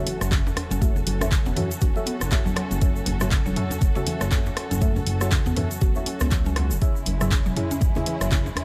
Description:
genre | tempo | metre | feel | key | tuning
afro house | 120 BPM | 4/4 | swing 58% on 16ths | F# minor | A4 = 441 Hz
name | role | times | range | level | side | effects
dark studio string section | sustained chords | 0.0-8.6 s | C#3 to A4 | -36 LUFS | equal | sidechain pumping
mallet-like synth pluck | arpeggios | 0.0-8.4 s | C#3 to F#4 | -33 LUFS | equal | chorus, phaser, sidechain pumping, tape echo
deep mellow chord stab | stabs | 0.0-8.6 s | E4 to E5 | -36 LUFS | equal | chorus, phaser, sidechain pumping, tape echo
sub drop | sound effects | 0.1-0.8 s | none | -46 LUFS | equal | none
deep house drum kit | drums | 0.1-8.6 s | handclaps, hi-hat, rim click, toms | -31 LUFS | equal | none
congas | percussion | 0.1-8.4 s | none | -37 LUFS | equal | none
smooth synth bass | bass | 0.2-8.5 s | E1 to C#2 | -29 LUFS | equal | sidechain pumping
egg shaker | percussion | 0.2-8.5 s | none | -41 LUFS | equal | none
electronic kick drum | drums | 0.3-8.4 s | none | -24 LUFS | equal | none
djembe | percussion | 0.3-8.6 s | none | -37 LUFS | equal | none
room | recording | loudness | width
digital ambience | none | -23 LUFS | mono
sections
0.0-8.6 A section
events
impact 0.0-0.8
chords
0.0 F#m7; 6.8 C#m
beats
0.32 | 0.82 1.32 1.82 2.32 | 2.82 3.32 3.82 4.32 | 4.82 5.32 5.82 6.32 | 6.82 7.32 7.82 8.32

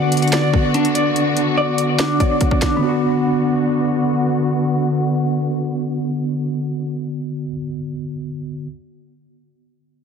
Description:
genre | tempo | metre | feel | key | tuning
hip hop, trap | 144 BPM | 4/4 | half-time | B minor | A4 = 440 Hz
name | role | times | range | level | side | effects
mellow tine electric piano | accompaniment | 0.0-8.7 s | D3 to D5 | -20 LUFS | right 1 dB | medium stereo tremolo, low-pass filter
warm symphonic string section | sustained chords | 0.0-6.9 s | D3 to F#4 | -23 LUFS | left 2 dB | low-pass filter
semi-hollow electric guitar | arpeggios | 0.0-7.6 s | B3 to F#5 | -21 LUFS | equal | tremolo, low-pass filter, ping-pong delay
trap drum kit | drums | 0.1-2.7 s | finger snaps, hi-hat, kick drum, snare drum | -20 LUFS | equal | overdrive
room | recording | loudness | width
light reverb | heavily compressed radio sound, multiband compression | -17 LUFS | side -6 dB against mid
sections
0.0-2.8 A section; 2.8-6.2 B section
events
filter sweep 0.0-2.8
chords
0.0 Bm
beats
0.33 0.74 | 1.16 1.58 1.99 2.41 | 2.83 3.24 3.66 4.08 | 4.49 4.91 5.33 5.74

